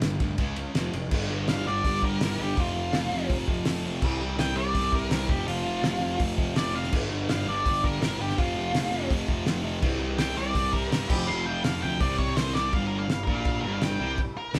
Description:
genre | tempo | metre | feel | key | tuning
garage rock duo or trio | 165 BPM | 4/4 | straight | unclear | A4 = 441 Hz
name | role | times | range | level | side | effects
thick fuzz guitar | riff | 0.0-14.6 s | F2 to C#4 | -33 LUFS | equal | distortion
fuzz picked electric bass | bass | 0.0-14.6 s | F1 to G2 | -34 LUFS | equal | overdrive, tube saturation
cloth-damped thuddy drum kit | drums | 0.0-14.6 s | crash cymbal, hi-hat, kick drum, ride cymbal, snare drum | -31 LUFS | equal | none
octave-fuzz lead guitar | melody | 1.5-14.5 s | F4 to C6 | -33 LUFS | equal | distortion
room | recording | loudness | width
moderate large studio reverb, RT60 1.1 s | band playing live in one room | -27 LUFS | mono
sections
0.0-1.1 A section; 1.1-12.7 B section; 12.7-14.6 C section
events
drum fill 12.5; lead electric guitar solo 12.7-14.6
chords
0.4 C#5; 0.8 F5; 1.1 G5; 2.6 F5; 4.0 C5; 5.3 F5; 6.9 G5; 8.4 F5; 9.8 C5; 11.1 F5; 12.0 C5; 12.7 G5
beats
0.03 0.39 0.76 | 1.12 1.48 1.84 2.21 | 2.57 2.93 3.30 3.66 | 4.02 4.38 4.75 5.11 | 5.47 5.83 6.20 6.56 | 6.92 7.29 7.65 8.01 | 8.38 8.74 9.10 9.46 | 9.83 10.19 10.55 10.92 | 11.28 11.64 12.00 12.37 | 12.73 13.09 13.46 13.82 | 14.18 14.55

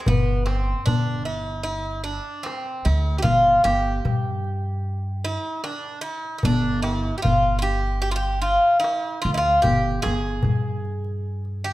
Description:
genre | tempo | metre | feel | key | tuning
Turkish makam ensemble | 75 BPM | 4/4 | straight | G makam hicaz | A4 = 438 Hz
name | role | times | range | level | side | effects
Greek bouzouki | melody | 0.0-11.7 s | B3 to Ab4 | -23 LUFS | equal | none
upright bass | bass | 0.1-11.7 s | G1 to G2 | -24 LUFS | equal | none
darbuka | percussion | 0.1-11.7 s | none | -25 LUFS | left 2 dB | none
room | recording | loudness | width
moderate recital hall reverb, RT60 1.5 s | none | -20 LUFS | side -16 dB against mid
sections
0.1-11.7 A section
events
none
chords
none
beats
| 0.06 0.86 1.66 2.46 | 3.25 4.05 4.85 5.65 | 6.45 7.25 8.04 8.84 | 9.64 10.44 11.24

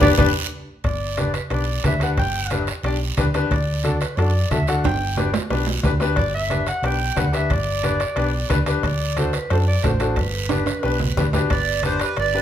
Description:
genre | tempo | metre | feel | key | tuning
latin, cumbia | 180 BPM | 4/4 | straight | G major | A4 = 438 Hz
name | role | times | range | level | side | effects
warm clarinet | second line | 0.0-12.4 s | G4 to G5 | -26 LUFS | right 1 dB | none
bright upright piano | accompaniment | 0.0-12.4 s | D4 to D5 | -24 LUFS | left 4 dB | none
hollow-body short-scale fingered electric bass | bass | 0.0-12.4 s | G1 to F#2 | -23 LUFS | equal | none
bombo | percussion | 0.0-12.3 s | none | -26 LUFS | left 1 dB | none
congas | percussion | 0.0-12.3 s | none | -28 LUFS | right 2 dB | none
guiro | percussion | 0.0-12.4 s | none | -32 LUFS | right 8 dB | none
timbales | percussion | 0.0-12.3 s | none | -29 LUFS | right 6 dB | none
accordion | melody | 11.5-12.4 s | B4 to D5 | -22 LUFS | right 6 dB | none
room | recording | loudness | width
moderate large studio reverb, RT60 1.1 s | minimal, uncompressed stereo recording, faint mains hum | -19 LUFS | side -10 dB against mid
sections
0.8-11.5 A section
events
band accent 0.0-0.8; drum fill 0.3-0.8, 4.8-6.2, 10.5-11.5; clarinet solo 0.8-11.5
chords
0.0 G; 3.5 D; 4.8 G; 8.8 D7; 10.2 G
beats
0.18 0.52 | 0.85 1.18 1.51 1.84 | 2.18 2.51 2.84 3.17 | 3.51 3.84 4.17 4.50 | 4.84 5.17 5.50 5.84 | 6.17 6.50 6.83 7.17 | 7.50 7.83 8.17 8.50 | 8.83 9.17 9.50 9.83 | 10.17 10.50 10.84 11.17 | 11.50 11.84 12.17

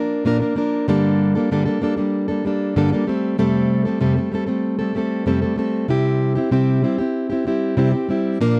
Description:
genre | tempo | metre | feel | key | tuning
pop | 96 BPM | 4/4 | straight | unclear | A4 = 440 Hz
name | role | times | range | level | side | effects
fingerpicked plugged-in steel-string acoustic guitar | solo | 0.0-8.6 s | F2 to Bb4 | -20 LUFS | equal | none
room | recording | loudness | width
moderate booth ambience, RT60 0.3 s | dry, close 1970s-style studio recording | -20 LUFS | mono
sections
0.0-8.6 A section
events
none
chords
0.0 Bb; 0.9 Gmadd9; 3.1 Fadd9; 5.9 C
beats
0.26 | 0.88 1.51 2.13 2.76 | 3.38 4.01 4.64 5.26 | 5.89 6.51 7.14 7.76 | 8.39

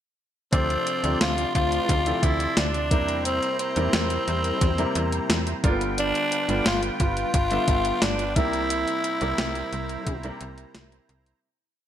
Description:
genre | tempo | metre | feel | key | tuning
1980s-style pop | 88 BPM | 4/4 | straight | unclear | A4 = 441 Hz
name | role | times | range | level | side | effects
growling tenor saxophone | melody | 0.5-10.8 s | C4 to F4 | -26 LUFS | left 1 dB | none
clear baby grand piano | accompaniment | 0.5-11.5 s | C3 to E5 | -30 LUFS | right 1 dB | wide subtle chorus
musette accordion | sustained chords | 0.5-11.4 s | F3 to C6 | -34 LUFS | right 3 dB | none
slap-like FM bass | bass | 0.5-11.3 s | G1 to E2 | -30 LUFS | equal | none
clean 12-bit digital drum machine | drums | 0.5-11.4 s | hi-hat, kick drum, snare drum | -25 LUFS | equal | gated reverb
mellow synth brass | stabs | 1.5-10.2 s | G3 to C5 | -34 LUFS | left 1 dB | chorus, ping-pong delay
room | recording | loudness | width
moderate lush hall reverb, RT60 1.6 s | bright 1980s-style digital production | -22 LUFS | side -10 dB against mid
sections
0.5-11.4 verse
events
fade-out 8.7-11.4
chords
0.5 Dm7; 2.9 C7/E; 5.6 G7; 8.4 C7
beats
| 0.53 1.21 1.89 2.57 | 3.25 3.93 4.62 5.30 | 5.98 6.66 7.34 8.03 | 8.71 9.39 10.07 10.75

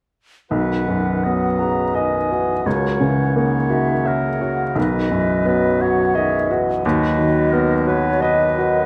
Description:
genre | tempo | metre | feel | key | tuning
classical, romantic movement for piano and orchestra | 86 BPM | 3/4 | rubato | B major | A4 = 440 Hz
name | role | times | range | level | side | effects
clear baby grand piano | melody | 0.5-8.9 s | B1 to E5 | -20 LUFS | equal | none
hollow concert flute | second line | 0.5-8.9 s | C#5 to A#5 | -27 LUFS | equal | none
warm clarinet | second line | 0.5-8.9 s | F#4 to B4 | -31 LUFS | equal | none
warm oboe | second line | 0.5-8.9 s | A#4 to D#5 | -30 LUFS | equal | none
dark bassoon | accompaniment | 0.5-8.9 s | C#3 to F#3 | -28 LUFS | equal | none
room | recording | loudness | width
moderate recital hall reverb, RT60 1.4 s | none | -19 LUFS | mono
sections
0.5-8.9 A section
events
none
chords
0.5 B; 6.8 B/D#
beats
| 0.51 1.24 1.96 | 2.65 3.36 4.06 | 4.77 5.46 6.15 | 6.84 7.52 8.21

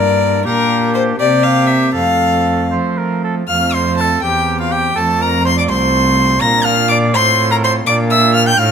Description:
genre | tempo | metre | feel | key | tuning
classical, baroque-style sonata movement with continuo | 82 BPM (dotted quarters) | 6/8 | straight | F major | A4 = 440 Hz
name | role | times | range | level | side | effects
rich violin | melody | 0.0-8.7 s | Bb4 to Bb6 | -16 LUFS | left 6 dB | none
warm oboe | second line | 0.0-8.7 s | F4 to Bb5 | -18 LUFS | right 6 dB | none
pipe organ, foundations | accompaniment | 0.0-8.7 s | C2 to G4 | -21 LUFS | left 2 dB | none
rich cello | bass | 0.0-8.7 s | C2 to F3 | -17 LUFS | right 2 dB | none
room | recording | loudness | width
moderate stone room reverb, RT60 1.0 s | none | -12 LUFS | side -7 dB against mid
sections
0.0-3.5 A section; 3.5-8.7 B section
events
none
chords
0.5 Gm/Bb; 1.2 C5; 2.0 F; 4.2 C/E; 5.0 F; 6.4 Bb; 7.1 F/A; 7.9 Bb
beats
| 0.45 1.20 | 1.95 2.73 | 3.49 4.23 | 4.96 5.69 | 6.42 7.15 | 7.87 8.59

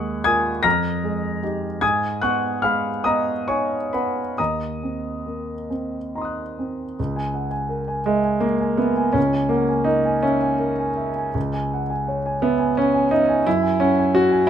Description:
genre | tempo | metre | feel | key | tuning
classical, impressionist solo piano | 44-60 BPM (dotted quarters) | 6/8 | rubato | unclear | A4 = 440 Hz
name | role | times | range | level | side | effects
warm concert grand piano | solo | 0.0-14.5 s | C#2 to Bb6 | -19 LUFS | equal | none
room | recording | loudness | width
light reverb | none | -19 LUFS | side -9 dB against mid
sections
0.0-7.0 A section; 7.0-14.5 B section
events
none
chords
0.0 Ebm11; 0.7 Fm11; 1.8 Abm6; 4.4 Ebm6; 7.0 F#9/C#; 11.4 C#m; 13.5 F#sus2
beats
0.65 | 1.82 3.05 | 4.38 5.71 | 6.99 8.08 | 9.16 10.25 | 11.35 12.43 | 13.46 14.48

